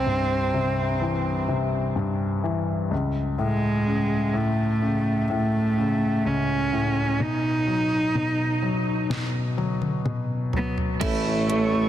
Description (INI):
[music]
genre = pop ballad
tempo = 63 BPM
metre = 4/4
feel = straight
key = unclear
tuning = A4 = 440 Hz
[part]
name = warm cello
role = melody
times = 0.0-11.9 s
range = G#3 to D#4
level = -25 LUFS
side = right 2 dB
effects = digital delay
[part]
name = clear grand piano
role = accompaniment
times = 0.0-11.9 s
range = C2 to E4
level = -25 LUFS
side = left 2 dB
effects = none
[part]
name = pop drum kit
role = drums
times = 9.1-11.7 s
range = crash cymbal, hi-hat, kick drum, snare drum, toms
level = -30 LUFS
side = equal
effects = overdrive
[part]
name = chorused pulse-width pad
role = sustained chords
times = 11.0-11.9 s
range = A4 to C#6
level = -29 LUFS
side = right 2 dB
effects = none
[part]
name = clean electric guitar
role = arpeggios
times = 11.0-11.9 s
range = A2 to E4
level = -30 LUFS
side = right 10 dB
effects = lush chorus
[part]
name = warm tuba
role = bass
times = 11.0-11.9 s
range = A1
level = -27 LUFS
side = equal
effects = none
[sound]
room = light reverb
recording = dense, heavily limited modern master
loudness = -22 LUFS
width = side -11 dB against mid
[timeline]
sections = 0.0-11.0 A section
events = drum fill 9.1-11.0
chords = 0.0 C; 2.9 A/C#; 7.2 B; 11.0 A